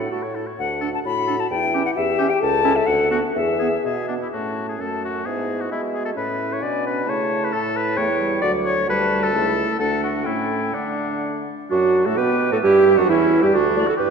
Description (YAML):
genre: quick classical-period movement for wind quintet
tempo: 130 BPM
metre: 2/4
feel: rubato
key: A major, D major from 8.0 s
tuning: A4 = 440 Hz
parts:
  - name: bright silver concert flute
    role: melody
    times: 0.0-13.9 s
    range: E4 to B5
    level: -26 LUFS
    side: left 7 dB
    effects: none
  - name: warm oboe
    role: second line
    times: 0.0-14.1 s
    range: C#4 to D5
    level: -25 LUFS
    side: left 3 dB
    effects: none
  - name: mellow French horn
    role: accompaniment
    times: 0.0-13.8 s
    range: E3 to A4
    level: -26 LUFS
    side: left 1 dB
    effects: none
  - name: mellow clarinet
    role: accompaniment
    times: 0.0-14.1 s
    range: B3 to B4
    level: -23 LUFS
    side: right 7 dB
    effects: none
  - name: dark bassoon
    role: bass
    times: 0.0-14.1 s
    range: C#2 to G#3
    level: -26 LUFS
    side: right 3 dB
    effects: none
room: wet concert hall reverb, RT60 2.5 s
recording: dark, warm production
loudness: -18 LUFS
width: side -6 dB against mid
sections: 0.0-4.3 A section; 4.3-11.7 B section; 11.7-14.1 A section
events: none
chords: 0.1 A; 0.6 D; 1.5 C#dim/E; 2.4 A/C#; 2.9 Bm/D; 3.4 E; 4.3 A; 4.8 F#m; 5.3 E/G#; 6.2 A; 6.6 G#dim/B; 7.1 A/C#; 8.0 A7/E; 8.4 D; 8.9 A7/D; 9.8 D; 10.3 A7; 10.7 D; 11.7 Gmaj9/F#; 12.6 Em69; 13.5 D